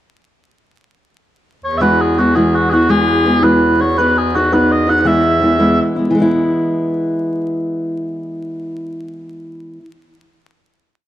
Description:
celtic folk, Celtic jig; 111 BPM (dotted quarters); 6/8; straight; E major; A4 = 440 Hz
mellow small bagpipes; melody; 1.6-5.8 s; E2 to F#5; -14 LUFS; right 1 dB
fingerpicked steel-string acoustic guitar; accompaniment; 1.8-9.8 s; E3 to B4; -15 LUFS; equal
moderate recital hall reverb, RT60 1.4 s; close, detailed microphones, vinyl crackle; -12 LUFS; side -12 dB against mid
0.7-1.8 pickup bar; 1.8-6.1 A section; 6.1-8.3 final chord
0.7 N.C.; 1.8 Eadd9; 4.0 B; 5.1 E
| 0.74 1.28 | 1.82 2.36 | 2.90 3.44 | 3.98 4.52 | 5.06 5.60 | 6.14 6.68 | 7.21 7.75

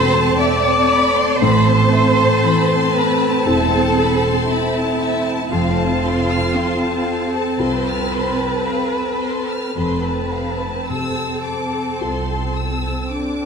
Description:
cinematic, emotional film score for orchestra; 53-59 BPM; 4/4; rubato; A4 = 436 Hz
warm studio violin section; melody; 0.0-13.5 s; A5; -27 LUFS; left 4 dB
concert flute; second line; 0.0-13.1 s; E5 to D6; -25 LUFS; left 3 dB
warm studio violin section; second line; 0.0-13.5 s; E5 to F6; -28 LUFS; equal
felt-muted upright piano; accompaniment; 0.0-13.5 s; F2 to A4; -25 LUFS; left 4 dB
rich studio viola section; accompaniment; 0.0-13.5 s; C4; -23 LUFS; right 2 dB
dark French horn section; sustained chords; 0.0-13.5 s; C4 to A4; -24 LUFS; left 2 dB
rich studio cello section; bass; 0.0-13.1 s; E4 to D5; -22 LUFS; right 2 dB
rich studio double bass section; bass; 0.0-12.9 s; E1 to C2; -22 LUFS; right 3 dB
bright alto flute; melody; 13.1-13.5 s; D4; -25 LUFS; left 1 dB
moderate scoring stage reverb, RT60 1.9 s; -15 LUFS; side -6 dB against mid
0.0-13.5 A section
0.0 Amadd9; 5.5 F
0.38 | 1.41 2.43 3.45 4.48 | 5.50 6.54 7.58 8.65 | 9.75 10.88 11.99 13.09

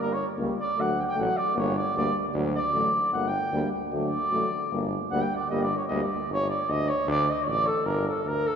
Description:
balkan folk, Balkan brass band; 152 BPM; 2/4; swing 54% on 16ths; G hungarian minor; A4 = 441 Hz
warm flugelhorn; melody; 0.0-8.6 s; A4 to G5; -26 LUFS; equal
clear trombone; accompaniment; 0.0-6.1 s; F#3 to G3; -34 LUFS; right 4 dB
mellow French horn; accompaniment; 0.0-6.1 s; A3 to Bb3; -33 LUFS; left 3 dB
clear tuba; bass; 0.0-8.5 s; G1 to D2; -30 LUFS; equal
wet church reverb, RT60 3.0 s; recorded in a church or concert hall, nothing above 7.8 kHz; -24 LUFS; side -7 dB against mid
0.0-6.3 A section; 6.3-8.6 B section
flugelhorn solo 0.0-6.3
0.0 Gm; 0.8 D; 1.6 Gm; 2.4 D; 3.1 Gm; 3.9 D; 4.7 Gm; 6.3 G5; 7.1 D5; 7.9 G5
| 0.00 0.40 | 0.79 1.18 | 1.57 1.97 | 2.36 2.75 | 3.15 3.54 | 3.93 4.33 | 4.72 5.11 | 5.51 5.90 | 6.29 6.69 | 7.08 7.48 | 7.87 8.26

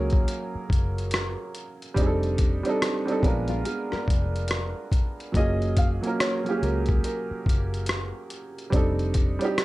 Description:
lo-fi hip hop; 71 BPM; 4/4; swing 63% on 16ths; F# major; A4 = 439 Hz
felt-muted upright piano; melody; 0.0-8.3 s; A#4 to E#5; -34 LUFS; left 1 dB; analog delay, plate reverb
warm upright piano; accompaniment; 0.0-9.6 s; F#3 to A#4; -28 LUFS; right 2 dB; cassette tape, plate reverb
vintage muted fingered electric bass; bass; 0.0-9.4 s; F1 to C#2; -28 LUFS; left 1 dB
boom bap sampler-style drum kit; drums; 0.1-9.6 s; hi-hat, kick drum, rim click; -25 LUFS; equal
nylon-string guitar; second line; 3.5-5.1 s; E#4 to A#4; -37 LUFS; left 4 dB; analog delay, plate reverb
light reverb; cassette tape; -23 LUFS; side -18 dB against mid
0.0-9.6 A section
0.0 F#maj9; 2.0 F13; 3.2 A#7b9; 5.3 F#maj9; 8.7 F13
0.27 1.12 | 1.96 2.81 3.65 4.50 | 5.34 6.19 7.03 7.88 | 8.72 9.57

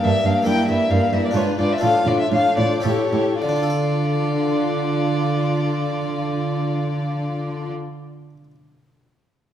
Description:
classical, baroque-style concerto movement with solo episodes; 101-141 BPM; 3/4; straight; D minor; A4 = 439 Hz
warm chamber violin section; melody; 0.0-7.7 s; A4 to B4; -30 LUFS; left 6 dB
warm violin; melody; 0.0-7.7 s; C#5 to G5; -24 LUFS; left 1 dB
warm studio violin section; second line; 0.0-7.7 s; D4 to G4; -27 LUFS; left 2 dB
dark studio viola section; accompaniment; 0.0-7.7 s; Bb3 to E4; -26 LUFS; equal
harpsichord; accompaniment; 0.0-8.6 s; G2 to F5; -26 LUFS; equal
warm chamber cello section; bass; 0.0-7.7 s; G2 to D3; -24 LUFS; right 2 dB
wet recital hall reverb, RT60 1.6 s; dark, warm production; -18 LUFS; side -10 dB against mid
0.0-3.4 A section; 3.4-6.9 B section
slowing down 0.0-3.4
0.5 Edim/G; 1.4 G#dim7; 1.8 Dm/A; 2.8 A7; 3.4 Dm
0.04 | 0.46 0.90 1.35 | 1.82 2.32 2.84 | 3.41 4.01 4.59 | 5.18 5.78 6.36

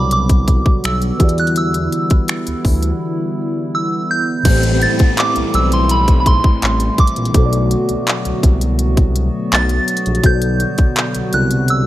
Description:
contemporary R&B; 83 BPM; 4/4; straight; A4 = 440 Hz
soft synth bell; melody; 0.0-11.9 s; B5 to A6; -20 LUFS; right 2 dB; chorus, tape echo
muted felt-like synth keys; accompaniment; 0.0-11.9 s; A2 to D5; -23 LUFS; left 1 dB; chorus, phaser
hollow soft pad; sustained chords; 0.0-11.9 s; D3 to F#4; -22 LUFS; equal; chorus, sidechain pumping
smooth synth bass; bass; 0.0-11.9 s; A1 to E2; -18 LUFS; equal
trap drum kit; drums; 0.1-11.8 s; crash cymbal, finger snaps, handclaps, hi-hat, kick drum; -15 LUFS; equal
downlifter; sound effects; 4.5-10.2 s; -28 LUFS; left 2 dB
little or no reverb; -13 LUFS; side -14 dB against mid
0.0-4.5 A section; 4.5-11.9 B section
break 3.0-4.5
0.0 Gmaj7; 1.2 Em7; 4.5 Am7; 7.3 Bm7; 10.2 Gmaj7/B
0.12 0.84 | 1.56 2.29 3.01 3.73 | 4.45 5.18 5.90 6.62 | 7.34 8.07 8.79 9.51 | 10.24 10.96 11.68

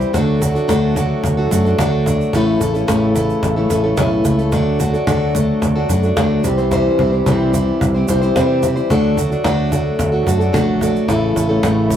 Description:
indie folk with a building arrangement; 110 BPM; 4/4; straight; D major; A4 = 440 Hz
picked plugged-in steel-string acoustic guitar; accompaniment; 0.0-12.0 s; A2 to C5; -17 LUFS; left 2 dB
pedal harmonium; sustained chords; 0.0-12.0 s; C#3 to G4; -22 LUFS; right 4 dB
fingered electric bass; bass; 0.0-12.0 s; A1 to C3; -20 LUFS; right 1 dB
egg shaker; percussion; 0.0-12.0 s; -31 LUFS; right 8 dB
cajon; drums; 0.1-12.0 s; -22 LUFS; equal
wet booth ambience, RT60 0.2 s; rough rehearsal-room recording, tube saturation; -14 LUFS; side -10 dB against mid
0.0-12.0 A section
0.1 D; 2.3 A; 4.5 D; 6.4 C; 8.9 D; 11.1 A
| 0.14 0.69 1.24 1.78 | 2.33 2.88 3.43 3.98 | 4.52 5.07 5.62 6.17 | 6.71 7.26 7.81 8.36 | 8.91 9.45 10.00 10.55 | 11.10 11.64

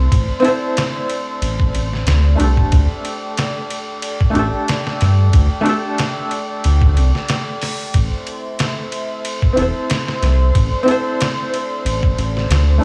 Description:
trip hop; 92 BPM; 4/4; swing 54% on 16ths; A minor; A4 = 435 Hz
felt-muted upright piano; accompaniment; 0.0-12.8 s; A3 to C5; -23 LUFS; equal; tremolo, tape echo
dark analog pad; sustained chords; 0.0-12.8 s; A4 to D6; -28 LUFS; equal; chorus
round analog bass; bass; 0.0-12.8 s; E1 to G2; -17 LUFS; equal; tube saturation
trip hop sampler-style drum kit; drums; 0.1-12.7 s; hi-hat, kick drum, ride cymbal, snare drum; -22 LUFS; equal; studio reverb
little or no reverb; -17 LUFS; mono
0.0-12.8 A section
0.0 Am; 2.7 Dsus4; 7.9 Am
| 0.12 0.77 1.42 2.07 | 2.72 3.38 4.03 4.68 | 5.33 5.98 6.64 7.29 | 7.94 8.59 9.24 9.90 | 10.55 11.20 11.85 12.51

